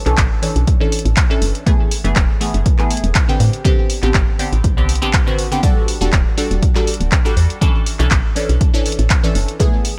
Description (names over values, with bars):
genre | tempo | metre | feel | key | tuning
deep house | 121 BPM | 4/4 | swing 53% on 16ths | unclear | A4 = 437 Hz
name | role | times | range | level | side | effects
filtered dub chord stab | stabs | 0.0-10.0 s | D3 to A4 | -23 LUFS | equal | phaser, sidechain pumping, tape echo
woody FM bass | bass | 0.1-9.5 s | D1 to A2 | -19 LUFS | equal | sidechain pumping
punchy analog drum machine | drums | 0.1-10.0 s | handclaps, hi-hat | -24 LUFS | equal | none
electronic kick drum | drums | 0.2-9.7 s | none | -18 LUFS | equal | none
room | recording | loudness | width
little or no reverb | none | -16 LUFS | mono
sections
0.0-10.0 A section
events
none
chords
0.0 Bm11 (rootless); 1.7 F#m11 (rootless); 3.4 Am11; 5.6 Em11; 7.6 Bm11 (rootless)